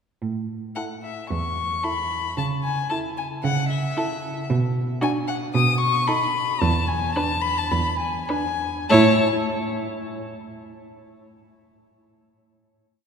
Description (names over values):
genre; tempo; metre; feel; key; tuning
quick classical-period movement for string quartet; 97-115 BPM; 4/4; rubato; A major; A4 = 440 Hz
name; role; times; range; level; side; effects
rich cello; bass; 0.2-9.2 s; E2 to C#3; -25 LUFS; right 3 dB; none
dark violin; melody; 0.8-9.2 s; E5 to D#6; -25 LUFS; left 5 dB; none
rich violin; second line; 0.8-9.2 s; F#4 to C#5; -26 LUFS; left 4 dB; none
warm viola; accompaniment; 0.8-9.2 s; D4 to E4; -28 LUFS; right 3 dB; none
room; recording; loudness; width
wet church reverb, RT60 3.8 s; recorded in a church or concert hall; -21 LUFS; side -6 dB against mid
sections
0.2-8.9 A section; 8.9-11.2 final chord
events
slowing down 3.4-8.9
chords
0.2 A; 2.4 A/C#; 4.5 Bm; 5.5 B7; 6.6 E5; 8.9 A5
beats
| 0.22 0.76 1.30 1.83 | 2.37 2.90 3.44 3.97 | 4.50 5.02 5.55 6.08 | 6.62 7.16 7.72 8.29 | 8.89